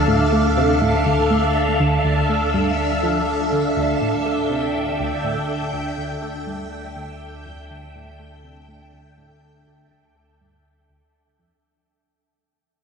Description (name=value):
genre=ambient, sequencer-driven space music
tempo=122 BPM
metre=4/4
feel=straight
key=D minor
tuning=A4 = 439 Hz
part: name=phased string machine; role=sustained chords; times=0.0-11.7 s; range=D4 to G5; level=-20 LUFS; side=equal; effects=ensemble chorus, phaser
part: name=analog drone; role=bass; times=0.0-11.6 s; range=D2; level=-27 LUFS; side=equal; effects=chorus
part: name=tight sequenced synth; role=riff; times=0.1-11.5 s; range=D2 to A3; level=-24 LUFS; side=equal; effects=chorus, phaser, ping-pong delay
room=wet huge ambient reverb, RT60 8.1 s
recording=dreamy mix soaked in reverb, cassette tape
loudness=-17 LUFS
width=side -6 dB against mid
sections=0.0-11.6 A section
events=fade-out on synth arpeggio sound 0.0-11.6; fade-out 0.0-11.6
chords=0.0 Dmadd9